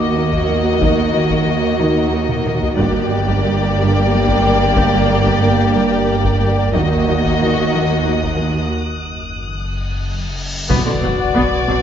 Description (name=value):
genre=cinematic, suspense film score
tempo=91 BPM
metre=3/4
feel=straight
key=unclear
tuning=A4 = 440 Hz
part: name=rich chamber violin section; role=melody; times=0.0-11.8 s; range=D5 to Eb5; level=-23 LUFS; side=left 5 dB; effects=none
part: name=warm chamber violin section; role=second line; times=0.0-11.8 s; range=Gb4 to G4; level=-22 LUFS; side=left 4 dB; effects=none
part: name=warm studio viola section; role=accompaniment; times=0.0-11.7 s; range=D3 to B3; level=-22 LUFS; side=right 2 dB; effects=none
part: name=pulsing gated texture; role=sustained chords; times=0.0-11.8 s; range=Gb4 to G5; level=-23 LUFS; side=left 1 dB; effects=chorus, built-in reverb
part: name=rich chamber cello section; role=riff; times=0.0-11.8 s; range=G2 to Eb4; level=-23 LUFS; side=right 2 dB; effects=none
part: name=dark chamber double bass section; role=bass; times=0.0-11.8 s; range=G1 to Eb2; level=-22 LUFS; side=right 4 dB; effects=none
part: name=warm chamber cello section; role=bass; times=0.0-11.8 s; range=Eb2 to B2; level=-22 LUFS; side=right 3 dB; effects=none
part: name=deep rumbling drone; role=drone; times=0.0-11.8 s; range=Gb1 to Eb2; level=-26 LUFS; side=left 1 dB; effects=built-in reverb, phaser
part: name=concert harp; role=texture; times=0.0-11.8 s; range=F#5 to G6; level=-28 LUFS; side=left 6 dB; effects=none
part: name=taiko ensemble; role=drums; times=0.3-11.8 s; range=none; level=-24 LUFS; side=left 1 dB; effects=none
part: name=rich chamber violin section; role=texture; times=6.8-11.8 s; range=D6 to G#6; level=-30 LUFS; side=left 3 dB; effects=none
part: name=cymbal swell and impact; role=sound effects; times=10.0-11.8 s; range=none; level=-25 LUFS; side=left 1 dB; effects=none
room=moderate scoring stage reverb, RT60 1.6 s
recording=nothing above 7.6 kHz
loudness=-14 LUFS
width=side -9 dB against mid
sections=0.0-10.7 A section; 10.7-11.8 B section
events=drum fill 2.3-2.8, 10.2-10.7; break 8.7-10.7; cymbal swell 10.0-10.7; impact 10.7-11.8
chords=0.0 Ebm; 2.8 Gm; 6.7 Ebm; 8.7 Ebm/Gb; 10.7 Bm